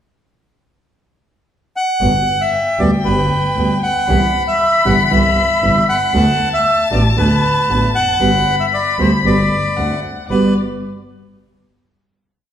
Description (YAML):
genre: tango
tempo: 116 BPM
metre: 4/4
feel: rubato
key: G major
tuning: A4 = 444 Hz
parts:
  - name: bandoneon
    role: melody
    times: 1.8-10.5 s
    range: B4 to F#5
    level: -16 LUFS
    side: equal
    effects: none
  - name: warm violin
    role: second line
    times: 2.0-10.5 s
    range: D5 to B5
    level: -21 LUFS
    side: left 6 dB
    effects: none
  - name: nylon-string guitar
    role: accompaniment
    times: 2.0-10.5 s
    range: C3 to F#4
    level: -19 LUFS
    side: right 1 dB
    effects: none
  - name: clear double bass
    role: bass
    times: 2.0-10.5 s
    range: F1 to D2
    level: -18 LUFS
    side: equal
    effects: none
room: wet recital hall reverb, RT60 1.4 s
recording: recorded in a church or concert hall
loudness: -12 LUFS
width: side -9 dB against mid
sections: 0.0-2.0 pickup bar; 2.0-10.3 A section; 10.3-12.4 final chord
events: none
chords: 0.0 N.C.; 2.0 Gmaj7; 4.1 Cmaj7; 6.1 D6; 8.2 Gmaj7; 9.8 D7; 10.3 Gmaj7